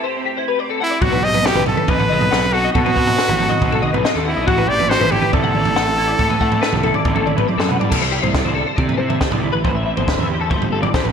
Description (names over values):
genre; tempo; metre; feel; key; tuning
math rock and midwest emo; 139 BPM; 4/4; straight; unclear; A4 = 440 Hz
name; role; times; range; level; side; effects
electric guitar through a small old amp; accompaniment; 0.0-11.1 s; A2 to D5; -27 LUFS; right 9 dB; ensemble chorus
twelve-string electric guitar; arpeggios; 0.0-11.1 s; F#4 to F#5; -22 LUFS; left 8 dB; ensemble chorus
clear trumpet; melody; 0.8-7.5 s; E4 to D#5; -19 LUFS; right 1 dB; digital delay
fuzz picked electric bass; bass; 1.0-11.1 s; G1 to C3; -22 LUFS; equal; overdrive
compact cocktail drum kit; drums; 1.0-11.1 s; crash cymbal, kick drum, snare drum, toms; -19 LUFS; right 1 dB; gated reverb
room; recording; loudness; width
moderate lush hall reverb, RT60 1.8 s, small room ambience; bright 1980s-style digital production; -15 LUFS; side -7 dB against mid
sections
0.0-7.9 A section; 7.9-11.1 B section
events
drum fill 7.5-7.9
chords
0.0 Am9; 1.0 B7b9b13; 4.5 D13/A; 7.9 C69; 9.6 Am9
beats
0.16 0.59 | 1.02 1.45 1.88 2.31 | 2.75 3.18 3.61 4.04 | 4.47 4.90 5.33 5.76 | 6.19 6.62 7.05 7.48 | 7.92 8.35 8.78 9.21 | 9.64 10.07 10.50 10.93